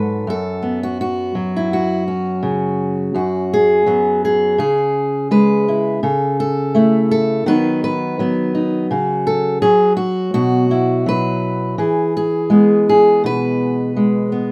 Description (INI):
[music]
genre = folk, solo fingerstyle acoustic guitar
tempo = 83 BPM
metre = 4/4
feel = straight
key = F# dorian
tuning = A4 = 441 Hz
[part]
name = fingerpicked steel-string acoustic guitar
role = solo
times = 0.0-14.5 s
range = F#2 to B4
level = -17 LUFS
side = equal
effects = none
[sound]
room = light reverb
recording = none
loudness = -17 LUFS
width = mono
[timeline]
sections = 0.0-3.2 A section; 3.2-14.5 B section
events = none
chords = 0.3 F#5; 4.6 C#m; 6.0 A/C#; 7.5 B/D#; 8.9 F#5/C#; 10.3 Bsus4; 11.8 E